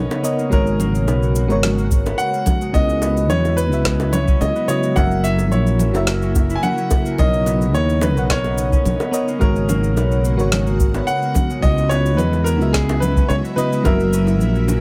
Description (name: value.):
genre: sunset chillout.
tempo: 108 BPM.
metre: 4/4.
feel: straight.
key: B major.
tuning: A4 = 440 Hz.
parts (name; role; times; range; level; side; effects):
warm concert grand piano; melody; 0.0-14.8 s; G#4 to G#5; -25 LUFS; equal; digital delay.
mellow FM electric piano; accompaniment; 0.0-14.8 s; C#3 to F#5; -26 LUFS; equal; chorus.
ethereal airy pad; sustained chords; 0.0-14.8 s; C#3 to F#4; -30 LUFS; equal; ensemble chorus, built-in reverb.
concert harp; arpeggios; 0.0-14.8 s; G#3 to E4; -30 LUFS; equal; delay.
sustaining fretless electric bass; bass; 0.0-14.8 s; F#1 to E2; -21 LUFS; equal; lush chorus.
electronic shaker, congas and snare drum; drums; 0.1-14.8 s; none; -27 LUFS; equal; none.
bongos; percussion; 0.1-14.4 s; none; -31 LUFS; equal; none.
electronic kick drum; drums; 0.5-14.0 s; none; -20 LUFS; equal; none.
room: light reverb.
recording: none.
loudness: -18 LUFS.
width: mono.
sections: 0.0-14.8 A section.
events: none.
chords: 0.0 Bmaj9; 0.5 G#m11; 2.7 C#m11; 5.0 F#7; 7.2 Bmaj9; 9.4 G#m11; 11.6 C#m11; 13.9 F#7.